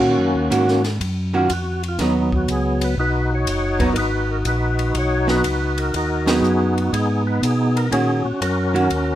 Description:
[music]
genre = soul jazz organ trio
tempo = 122 BPM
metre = 4/4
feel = swing 68% on 8ths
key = unclear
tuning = A4 = 439 Hz
[part]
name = percussive tonewheel organ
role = melody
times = 0.0-9.2 s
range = Gb3 to Db5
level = -21 LUFS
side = equal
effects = slow rotary speaker, overdrive, chorus vibrato
[part]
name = archtop guitar, miked and amplified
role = accompaniment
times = 0.0-8.9 s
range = Eb3 to Gb4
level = -21 LUFS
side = right 2 dB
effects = none
[part]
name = mellow tonewheel organ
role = bass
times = 0.0-9.2 s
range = Gb1 to Cb3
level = -22 LUFS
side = equal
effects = chorus vibrato, slow rotary speaker
[part]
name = compact cocktail drum kit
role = drums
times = 0.5-9.1 s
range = hi-hat, kick drum, ride cymbal, snare drum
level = -28 LUFS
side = left 1 dB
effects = none
[sound]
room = moderate large studio reverb, RT60 0.9 s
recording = none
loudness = -17 LUFS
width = side -12 dB against mid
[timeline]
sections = 0.0-9.2 A section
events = band accent 6.2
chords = 0.0 Ebm7; 2.0 Abm7; 7.9 Ebm7

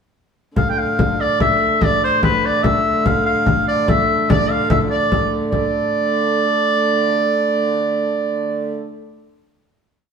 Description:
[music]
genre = medieval dance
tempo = 97 BPM (dotted quarters)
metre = 6/8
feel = straight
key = D minor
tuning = A4 = 441 Hz
[part]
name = clear shawm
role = melody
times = 0.6-8.7 s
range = B4 to G5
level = -17 LUFS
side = right 1 dB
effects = none
[part]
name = dark hurdy-gurdy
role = drone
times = 0.6-8.7 s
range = D3 to A3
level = -23 LUFS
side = right 1 dB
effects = none
[part]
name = frame drum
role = percussion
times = 0.6-5.7 s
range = none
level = -19 LUFS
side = left 1 dB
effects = none
[sound]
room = wet stone room reverb, RT60 1.2 s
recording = band playing live in one room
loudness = -15 LUFS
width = side -6 dB against mid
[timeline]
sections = 0.6-5.5 A section; 5.5-7.9 final chord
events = none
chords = none

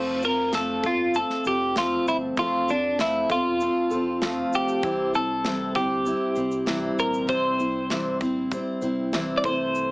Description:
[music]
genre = acoustic pop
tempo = 98 BPM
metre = 4/4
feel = straight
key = unclear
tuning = A4 = 437 Hz
[part]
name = twelve-string electric guitar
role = melody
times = 0.0-9.9 s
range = D4 to D5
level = -24 LUFS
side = equal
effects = none
[part]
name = picked steel-string acoustic guitar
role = accompaniment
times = 0.0-9.9 s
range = C3 to C5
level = -26 LUFS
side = equal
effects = none
[part]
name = fingered electric bass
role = bass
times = 0.0-9.9 s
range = E1 to D2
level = -42 LUFS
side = equal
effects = none
[part]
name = modern studio drum kit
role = drums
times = 0.2-9.9 s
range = kick drum, shaker, snare drum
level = -32 LUFS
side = equal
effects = none
[sound]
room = moderate studio reverb, RT60 0.6 s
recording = heavily compressed radio sound, small speaker sound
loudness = -22 LUFS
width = side -24 dB against mid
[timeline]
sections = 0.0-9.9 A section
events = none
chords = 0.0 F; 4.8 C

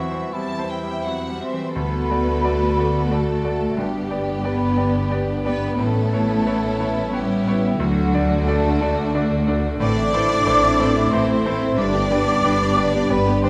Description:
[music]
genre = cinematic, emotional film score for orchestra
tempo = 90 BPM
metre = 3/4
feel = rubato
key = unclear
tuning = A4 = 440 Hz
[part]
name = mellow cor anglais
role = melody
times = 0.0-1.4 s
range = E4 to F#4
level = -33 LUFS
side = equal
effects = none
[part]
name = warm symphonic violin section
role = melody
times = 0.0-13.5 s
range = E4 to A5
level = -36 LUFS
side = equal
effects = none
[part]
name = warm symphonic violin section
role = second line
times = 0.0-13.5 s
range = F#4 to E5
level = -32 LUFS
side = equal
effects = none
[part]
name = bright concert grand piano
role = accompaniment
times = 0.0-13.5 s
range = D2 to D5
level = -27 LUFS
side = equal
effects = none
[part]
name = warm symphonic viola section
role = accompaniment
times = 0.0-13.5 s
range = E3 to F#4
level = -31 LUFS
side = equal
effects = none
[part]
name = concert harp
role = arpeggios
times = 0.0-13.5 s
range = G2 to D6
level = -32 LUFS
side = equal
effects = none
[part]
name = warm symphonic cello section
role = bass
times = 0.0-13.5 s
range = E2 to D4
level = -28 LUFS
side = equal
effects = none
[part]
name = mellow hollow large flute ensemble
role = second line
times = 1.4-13.5 s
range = F#5 to D6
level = -28 LUFS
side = equal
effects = none
[part]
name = mellow French horn section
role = sustained chords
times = 1.8-13.5 s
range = G3 to F#4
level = -29 LUFS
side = equal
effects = none
[part]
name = warm symphonic double bass section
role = bass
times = 1.8-13.5 s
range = G1 to D2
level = -28 LUFS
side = equal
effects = none
[sound]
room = moderate scoring stage reverb, RT60 1.7 s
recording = close, detailed microphones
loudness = -20 LUFS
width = mono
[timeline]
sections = 0.0-1.8 A section; 1.8-13.5 B section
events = none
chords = 0.0 C/E; 1.8 D; 3.8 G; 5.8 Aadd9; 7.8 D; 9.8 Am; 11.8 G

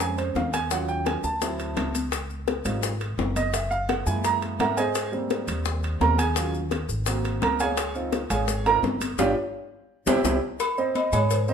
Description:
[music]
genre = Afro-Cuban jazz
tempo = 170 BPM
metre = 4/4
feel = straight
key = unclear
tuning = A4 = 444 Hz
[part]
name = warm upright piano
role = accompaniment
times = 0.0-11.5 s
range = Gb3 to Bb5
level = -26 LUFS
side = right 4 dB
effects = none
[part]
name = upright bass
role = bass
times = 0.0-11.5 s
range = Gb1 to Ab2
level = -29 LUFS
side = equal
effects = none
[part]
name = bongos and cowbell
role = percussion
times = 0.0-11.5 s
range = none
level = -32 LUFS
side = left 8 dB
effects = none
[part]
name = congas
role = percussion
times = 0.0-11.5 s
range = none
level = -33 LUFS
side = left 3 dB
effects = none
[part]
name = maracas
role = percussion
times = 0.0-11.5 s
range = none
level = -36 LUFS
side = left 6 dB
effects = none
[part]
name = timbales and agogo bells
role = percussion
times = 0.2-11.3 s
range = none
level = -33 LUFS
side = right 1 dB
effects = none
[part]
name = vibraphone with medium mallets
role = melody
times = 11.0-11.5 s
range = C5 to Eb5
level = -25 LUFS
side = equal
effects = none
[sound]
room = moderate large studio reverb, RT60 1.1 s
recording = band playing live in one room, lossy compression artefacts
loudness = -23 LUFS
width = side -7 dB against mid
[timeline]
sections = 0.0-10.6 A section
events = upright piano solo 0.0-10.6; band accent 9.2-10.6; drum fill 9.5-10.6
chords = 0.0 Eb13sus4; 0.7 Ebm7; 1.4 D9; 2.1 Dbmaj9#11; 3.5 Gb9; 5.0 Abmaj7; 6.4 Ebm7; 7.1 Ab7; 7.8 Dbmaj7; 9.2 G5; 9.9 C; 10.6 Ab

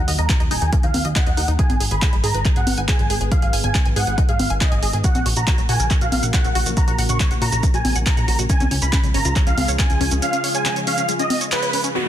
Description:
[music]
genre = uplifting trance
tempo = 139 BPM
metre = 4/4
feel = straight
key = unclear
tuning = A4 = 439 Hz
[part]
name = dense compressed supersaw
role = melody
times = 0.0-11.8 s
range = Cb5 to Db6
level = -24 LUFS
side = right 1 dB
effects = sidechain pumping, low-pass filter, dub echo
[part]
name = lush unison pad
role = sustained chords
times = 0.0-12.1 s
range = Db3 to F5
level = -30 LUFS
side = equal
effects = chorus, sidechain pumping
[part]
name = plucky analog bass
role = bass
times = 0.0-10.2 s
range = Eb1 to Bb2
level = -22 LUFS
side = equal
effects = sidechain pumping
[part]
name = tight sequenced synth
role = arpeggios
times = 0.1-12.1 s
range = Db3 to Ab5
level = -28 LUFS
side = left 2 dB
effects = chorus, phaser, sidechain pumping, tape echo
[part]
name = punchy analog drum machine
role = drums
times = 0.1-11.9 s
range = congas, handclaps, hi-hat, shaker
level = -24 LUFS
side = right 1 dB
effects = low-pass filter on hats, low-pass filter on snare, low-pass filter on cymbals, low-pass filter on perc, low-pass filter on room
[part]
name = electronic kick drum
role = drums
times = 0.3-9.9 s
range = none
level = -19 LUFS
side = equal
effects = none
[part]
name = dark grand piano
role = second line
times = 11.9-12.1 s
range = Gb4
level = -23 LUFS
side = left 2 dB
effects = none
[part]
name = downlifter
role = sound effects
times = 11.9-12.1 s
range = none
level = -21 LUFS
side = right 1 dB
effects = none
[sound]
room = light reverb, digital ambience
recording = dense, heavily limited modern master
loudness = -16 LUFS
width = side -11 dB against mid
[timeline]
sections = 0.0-11.9 A section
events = filter sweep on analog synth pad 0.0-11.9; band accent 11.5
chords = 0.0 Ebm; 1.6 Abm; 5.0 Gb/Bb; 8.5 Db

